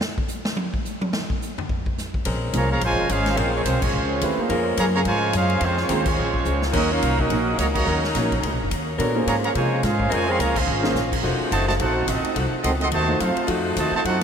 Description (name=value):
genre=jazz, big band swing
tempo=214 BPM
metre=4/4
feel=swing 59% on 8ths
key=Bb minor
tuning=A4 = 442 Hz
part: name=swinging big-band drum kit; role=drums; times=0.0-14.2 s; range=crash cymbal, hi-hat, kick drum, ride cymbal, snare drum, toms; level=-28 LUFS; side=equal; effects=none
part: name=warm saxophone section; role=sustained chords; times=2.3-14.2 s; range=F3 to C5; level=-29 LUFS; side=left 2 dB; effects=none
part: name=upright bass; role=bass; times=2.3-14.2 s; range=F1 to C3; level=-25 LUFS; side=left 1 dB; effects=none
part: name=warm baby grand piano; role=accompaniment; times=2.5-10.9, 13.1-13.2 s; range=A3 to Db5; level=-29 LUFS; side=right 1 dB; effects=none
part: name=clear trumpet section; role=melody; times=2.6-14.2 s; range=Ab3 to C6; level=-24 LUFS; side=right 1 dB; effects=diffuse ambient delay
part: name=warm trombone section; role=second line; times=2.6-14.2 s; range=C3 to Gb4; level=-28 LUFS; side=right 3 dB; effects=none
room=wet huge ambient reverb, RT60 7.3 s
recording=dreamy mix soaked in reverb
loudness=-20 LUFS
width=side -7 dB against mid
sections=0.0-2.3 A section; 2.3-14.2 B section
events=drum solo 0.0-2.3; band accent 3.8, 6.0, 7.7, 10.5; drum fill 6.5, 10.7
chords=0.0 N.C.; 2.3 Bbm9; 6.7 Ebm7; 9.0 Bbm9; 11.2 F7b9